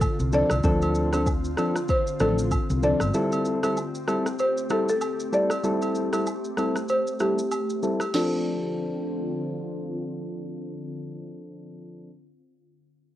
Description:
afrobeats; 96 BPM; 4/4; swing 58% on 16ths; D minor; A4 = 440 Hz
buzzing marimba with medium mallets; melody; 0.0-12.1 s; F4 to D5; -27 LUFS; equal; low-pass filter
ethereal airy pad; sustained chords; 0.0-11.4 s; D3 to G4; -32 LUFS; left 1 dB; ensemble chorus, built-in reverb, low-pass filter
woody fretless electric bass; bass; 0.0-3.1 s; G1 to D2; -26 LUFS; equal
afro-pop drum kit; drums; 0.0-8.3 s; crash cymbal, kick drum, rim click, shaker, snare drum; -29 LUFS; equal; cassette tape
agogo bells and woodblock; percussion; 0.0-8.4 s; -34 LUFS; right 4 dB
soft electric-piano-like synth keys; accompaniment; 0.3-12.1 s; F3 to A4; -27 LUFS; left 1 dB; chorus, low-pass filter
light reverb; home recording on cassette, lossy compression artefacts; -23 LUFS; side -13 dB against mid
0.0-8.1 A section; 8.1-10.6 B section
filter sweep 0.0-8.1
0.0 Dm7; 3.1 Am7; 8.1 Dm7

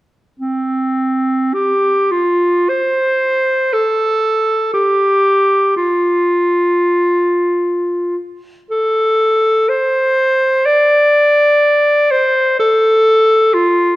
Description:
classical, free, expressive piece for unaccompanied clarinet; 45-66 BPM; 4/4; rubato; A4 = 440 Hz
bright clarinet; solo; 0.4-14.0 s; C4 to D5; -12 LUFS; equal
moderate recital hall reverb, RT60 1.5 s; -12 LUFS; side -17 dB against mid
0.4-14.0 A section

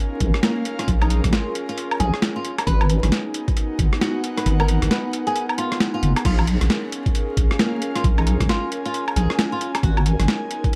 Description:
UK garage, two-step garage; 134 BPM; 4/4; swing 61% on 16ths; Bb phrygian; A4 = 441 Hz
ethereal airy pad; sustained chords; 0.0-10.8 s; Cb4 to Bb4; -36 LUFS; equal; ensemble chorus, built-in reverb, phaser, sidechain pumping
airy breathy pad; texture; 0.0-10.8 s; Cb4 to Ab5; -32 LUFS; equal; chorus, sidechain pumping
deep soft wobble bass; bass; 0.2-10.3 s; Gb1 to Bb1; -21 LUFS; equal; chorus
boom bap sampler-style drum kit; drums; 0.2-10.8 s; crash cymbal, hi-hat, rim click, snare drum, woodblock; -26 LUFS; equal; overdrive
electronic kick drum; drums; 0.2-10.7 s; -23 LUFS; equal; overdrive
flamenco guitar; melody; 0.4-10.0 s; Bb3 to Cb5; -30 LUFS; equal; analog chorus, tape echo
light reverb; vinyl crackle; -21 LUFS; mono
0.0-10.8 A section
kick drops out 4.5-6.3
0.0 Bbm7; 2.7 Abm7; 6.3 Bbm7; 9.8 Abm7

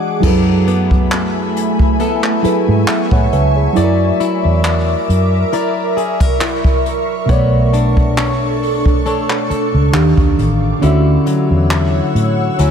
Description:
contemporary R&B; 68 BPM; 4/4; swing 54% on 16ths; F# minor; A4 = 440 Hz
mellow FM electric piano; accompaniment; 0.0-12.7 s; B2 to A5; -18 LUFS; right 2 dB; chorus, phaser
ethereal airy pad; sustained chords; 0.0-12.7 s; A3 to E6; -19 LUFS; right 1 dB; ensemble chorus, built-in reverb
fingerpicked plugged-in swing-style acoustic guitar; arpeggios; 0.0-12.7 s; D3 to D5; -20 LUFS; left 6 dB; tape echo
vintage muted fingered electric bass; bass; 0.2-12.7 s; A1 to A2; -15 LUFS; equal
jazz brush drum kit; drums; 0.2-12.7 s; crash cymbal, handclaps, hi-hat, kick drum; -17 LUFS; equal
light reverb, small room ambience; -12 LUFS; side -7 dB against mid
0.2-12.7 A section
break 0.0
0.2 F#m11; 3.8 F#7b13; 7.3 Bm9; 9.9 D#maj9; 10.8 Dmaj9

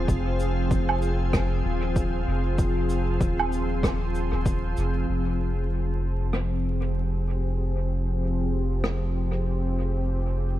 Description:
ambient dub; 96 BPM; 4/4; swing 58% on 16ths; F minor; A4 = 439 Hz
soft additive organ-like pad; sustained chords; 0.0-10.6 s; F3 to Ab4; -29 LUFS; left 1 dB; ensemble chorus, built-in reverb
soft dub sub bass; bass; 0.0-10.6 s; Eb1 to F1; -26 LUFS; equal
cabasa, woodblock and rim click; drums; 0.1-9.0 s; -31 LUFS; right 3 dB; low-pass filter on snare, low-pass filter on perc, low-pass filter on room, dub echo
electronic kick drum; drums; 0.1-4.6 s; -25 LUFS; equal
light reverb, small room ambience; vinyl crackle; -23 LUFS; side -14 dB against mid
0.0-5.1 A section; 5.1-10.6 B section
filter sweep on ambient pad 5.1-10.6
0.0 Fm7; 5.1 Fm

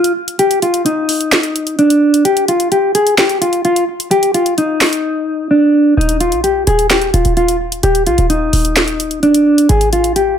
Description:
hip hop, trap; 129 BPM; 4/4; half-time; A4 = 440 Hz
mellow electric guitar; melody; 0.0-10.3 s; D4 to Ab4; -12 LUFS; equal; low-pass filter, ping-pong delay
trap drum kit; drums; 0.0-10.3 s; handclaps, hi-hat, snare drum; -16 LUFS; right 1 dB; overdrive
short 808-style bass; bass; 6.0-10.4 s; Eb1 to Bb1; -17 LUFS; equal
light reverb, studio reverb; -11 LUFS; side -8 dB against mid
0.0-10.4 A section
break 0.0-6.0; drums muted 5.0-6.0
0.0 N.C.; 9.7 Ab5

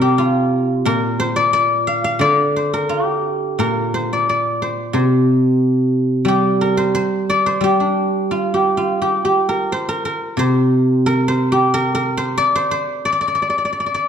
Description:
chinese traditional, Chinese solo plucked strings; 89 BPM; 2/4; rubato; G yu mode; A4 = 435 Hz
guzheng; solo; 0.0-14.1 s; Bb2 to F5; -15 LUFS; equal
wet recital hall reverb, RT60 1.4 s; dark, warm production; -15 LUFS; side -8 dB against mid
0.0-9.0 A section; 9.0-14.1 B section

